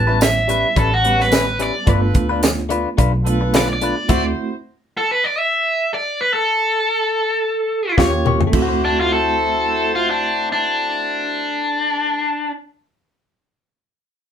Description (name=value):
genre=straight-eighth soul blues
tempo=108 BPM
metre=4/4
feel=swing 55% on 16ths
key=D mixolydian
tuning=A4 = 440 Hz
part: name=overdriven electric guitar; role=melody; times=0.0-12.5 s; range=D4 to A5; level=-18 LUFS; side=equal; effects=none
part: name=reed electric piano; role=accompaniment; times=0.0-4.5, 8.0-12.2 s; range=G3 to G4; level=-25 LUFS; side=right 5 dB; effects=fast tremolo
part: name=clear horn section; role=sustained chords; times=0.0-4.6, 8.0-11.5 s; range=C#4 to Db5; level=-26 LUFS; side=left 1 dB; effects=none
part: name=vintage muted picked electric bass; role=bass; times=0.0-4.3, 8.0-12.2 s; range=G1 to Eb2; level=-22 LUFS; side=equal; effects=none
part: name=direct-recorded clean electric guitar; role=stabs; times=0.1-4.3, 8.0-12.3 s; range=G3 to Db5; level=-24 LUFS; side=left 4 dB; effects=none
part: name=tight funk drum kit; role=drums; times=0.2-4.2, 8.0-8.7 s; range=crash cymbal, hi-hat, kick drum, snare drum, tambourine, toms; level=-18 LUFS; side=equal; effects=none
room=moderate studio ambience, RT60 0.5 s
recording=band playing live in one room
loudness=-16 LUFS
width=side -8 dB against mid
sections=0.0-8.5 A section; 8.5-10.8 B section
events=stop 4.1-8.0; drum fill 8.0-8.5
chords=0.0 A9; 1.9 G9 (rootless); 4.1 D9 (rootless); 8.0 Eb9; 8.5 D9